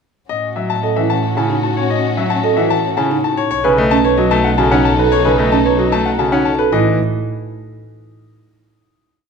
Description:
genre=classical, minimalist pattern music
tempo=112 BPM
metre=3/4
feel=straight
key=A lydian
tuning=A4 = 439 Hz
part: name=bright baby grand piano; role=melody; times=0.3-7.0 s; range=B4 to A5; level=-19 LUFS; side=left 8 dB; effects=none
part: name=warm symphonic violin section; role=sustained chords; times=0.3-6.5 s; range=C#4 to A4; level=-23 LUFS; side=left 5 dB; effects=none
part: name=warm double bass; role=bass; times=0.3-7.0 s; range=B1 to A2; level=-21 LUFS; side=right 3 dB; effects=none
part: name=bright grand piano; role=accompaniment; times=0.6-7.0 s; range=C#3 to C#4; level=-20 LUFS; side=left 1 dB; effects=none
part: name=marimba with soft mallets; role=arpeggios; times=0.8-7.0 s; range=C#4 to B4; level=-18 LUFS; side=right 5 dB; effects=none
room=wet recital hall reverb, RT60 1.6 s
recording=none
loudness=-13 LUFS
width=side -5 dB against mid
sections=0.3-6.7 A section; 6.7-8.3 final chord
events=none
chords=0.3 A6; 3.5 B7; 6.7 A5

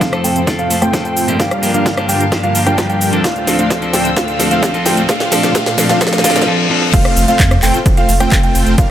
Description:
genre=EDM, festival progressive house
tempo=130 BPM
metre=4/4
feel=straight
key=F major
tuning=A4 = 440 Hz
part: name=clean electric guitar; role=accompaniment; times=0.0-6.9 s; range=G2 to A4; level=-19 LUFS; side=left 1 dB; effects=sidechain pumping, dub echo
part: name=dark studio string section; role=sustained chords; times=0.0-8.9 s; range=D2 to E6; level=-24 LUFS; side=equal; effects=sidechain pumping
part: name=warm concert grand piano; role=arpeggios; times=0.0-8.9 s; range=F5 to G5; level=-19 LUFS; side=right 1 dB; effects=vintage 12-bit sampler grit, sidechain pumping, low-pass filter, dub echo
part: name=dense compressed supersaw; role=riff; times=0.0-8.9 s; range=G3 to G5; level=-18 LUFS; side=equal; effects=sidechain pumping, low-pass filter, dub echo
part: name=electronic kick drum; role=drums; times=0.0-8.9 s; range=none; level=-16 LUFS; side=equal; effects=overdrive, high-pass filter on kick, high-pass filter on room
part: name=house drum kit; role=drums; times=0.0-8.9 s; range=crash cymbal, handclaps, hi-hat, ride cymbal, rim click, shaker, snare drum, toms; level=-18 LUFS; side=equal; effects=overdrive, high-pass filter on hats, high-pass filter on perc, high-pass filter on snare, high-pass filter on toms, high-pass filter on cymbals, high-pass filter on room
part: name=riser and reverse cymbal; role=sound effects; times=3.0-6.9 s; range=none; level=-24 LUFS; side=left 4 dB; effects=none
part: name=saturated sub bass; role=bass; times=6.9-8.9 s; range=F1 to F2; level=-17 LUFS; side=equal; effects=sidechain pumping
room=light reverb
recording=none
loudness=-11 LUFS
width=side -11 dB against mid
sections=0.0-6.9 A section; 6.9-8.9 B section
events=build-up 0.0-6.9; drum fill 0.0-6.5, 6.7; filter sweep on supersaw synth 0.0-6.9; reverse cymbal 6.0-6.9; drop 6.9-8.9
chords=0.0 F; 1.4 Gm7; 3.2 Dm7; 5.1 Bb; 6.9 F

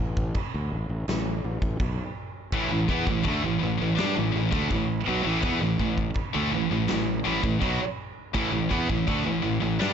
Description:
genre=heavy metal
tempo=83 BPM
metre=4/4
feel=straight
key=unclear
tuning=A4 = 441 Hz
part: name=fuzz fingered electric bass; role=bass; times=0.0-9.9 s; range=A1 to G2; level=-30 LUFS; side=equal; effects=overdrive
part: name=big rock drum kit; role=drums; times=0.2-9.9 s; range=china cymbal, kick drum, snare drum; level=-30 LUFS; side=equal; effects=none
part: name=heavy high-gain guitar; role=riff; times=2.5-9.9 s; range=A2 to D4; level=-28 LUFS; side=right 9 dB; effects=distortion
part: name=scooped high-gain guitar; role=riff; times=2.5-9.9 s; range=A2 to D4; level=-28 LUFS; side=left 10 dB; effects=distortion
room=light reverb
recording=dark, warm production, nothing above 7.8 kHz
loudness=-24 LUFS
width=side -8 dB against mid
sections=0.0-9.9 A section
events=none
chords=0.0 A5

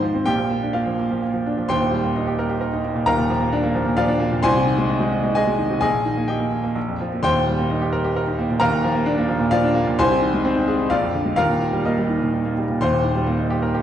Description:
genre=classical, virtuoso piano study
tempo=130 BPM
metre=3/4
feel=rubato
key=Eb major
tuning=A4 = 440 Hz
part: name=clear baby grand piano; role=solo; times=0.0-13.8 s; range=Eb1 to C6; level=-18 LUFS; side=equal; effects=none
room=wet recital hall reverb, RT60 1.6 s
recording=dark, warm production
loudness=-18 LUFS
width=side -10 dB against mid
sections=0.0-1.7 A section; 1.7-12.8 A section; 12.8-13.8 B section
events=none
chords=0.3 Bb; 1.7 Eb; 3.1 Bb/Eb; 4.4 Ab/C; 5.8 Eb/Bb; 6.8 Bb5; 7.2 Eb; 8.6 Bb/Eb; 10.0 Ab/C; 10.9 Bb7; 11.4 Eb

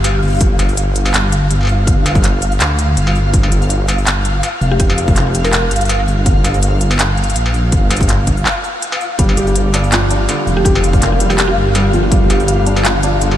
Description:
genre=half-time drum and bass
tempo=164 BPM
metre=4/4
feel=swing 54% on 16ths, half-time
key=G minor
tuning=A4 = 439 Hz
part: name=mallet-like synth pluck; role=melody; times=0.0-0.3, 4.7-5.7, 10.6-12.0 s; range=G4 to Bb4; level=-24 LUFS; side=left 1 dB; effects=chorus, ping-pong delay
part: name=dark detuned saw bass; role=bass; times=0.0-13.4 s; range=F1 to D2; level=-15 LUFS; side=equal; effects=none
part: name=industrial drum kit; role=drums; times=0.0-13.4 s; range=handclaps, hi-hat, struck metal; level=-18 LUFS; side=equal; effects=none
part: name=flickering grainy texture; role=texture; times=0.0-13.4 s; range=F5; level=-22 LUFS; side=left 1 dB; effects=built-in reverb, ensemble chorus
part: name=electronic kick drum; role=drums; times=0.4-12.2 s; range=none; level=-15 LUFS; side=equal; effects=none
part: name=felt-muted upright piano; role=arpeggios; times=9.2-13.4 s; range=D3 to G4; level=-18 LUFS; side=equal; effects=diffuse ambient delay
room=light reverb, digital ambience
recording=lossy compression artefacts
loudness=-11 LUFS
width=side -12 dB against mid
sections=0.0-13.4 A section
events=break 8.5-9.2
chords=0.0 Gm

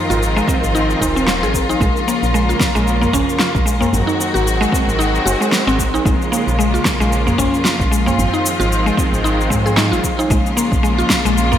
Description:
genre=organic downtempo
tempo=113 BPM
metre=4/4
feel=swing 56% on 16ths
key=Bb minor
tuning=A4 = 443 Hz
part: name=rich studio string section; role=sustained chords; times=0.0-11.6 s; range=Db3 to Gb4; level=-19 LUFS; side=left 1 dB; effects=sidechain pumping
part: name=twinkling granular texture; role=texture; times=0.0-10.3 s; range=Bb4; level=-29 LUFS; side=equal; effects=built-in reverb
part: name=mallet-like synth pluck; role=arpeggios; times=0.1-11.6 s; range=Ab3 to Ab4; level=-19 LUFS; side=equal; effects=chorus, digital delay
part: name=woody FM bass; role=bass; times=0.1-11.6 s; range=Eb1 to Ab2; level=-20 LUFS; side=equal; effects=sidechain pumping
part: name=electronic shaker and snare drum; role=drums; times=0.1-11.6 s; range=none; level=-21 LUFS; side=equal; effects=studio reverb, gated reverb
part: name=tabla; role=percussion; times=0.1-11.6 s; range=none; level=-27 LUFS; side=equal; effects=none
part: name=electronic kick drum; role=drums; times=0.5-11.2 s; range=none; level=-21 LUFS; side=equal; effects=studio reverb
room=wet lush hall reverb, RT60 1.8 s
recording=bright 1980s-style digital production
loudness=-14 LUFS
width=side -10 dB against mid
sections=0.0-10.3 A section; 10.3-11.6 B section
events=none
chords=0.0 Fm7/Ab; 1.8 Bbm7; 3.9 Ab7; 6.1 Bbm7; 8.2 Fm7/Ab; 10.3 Bbm7

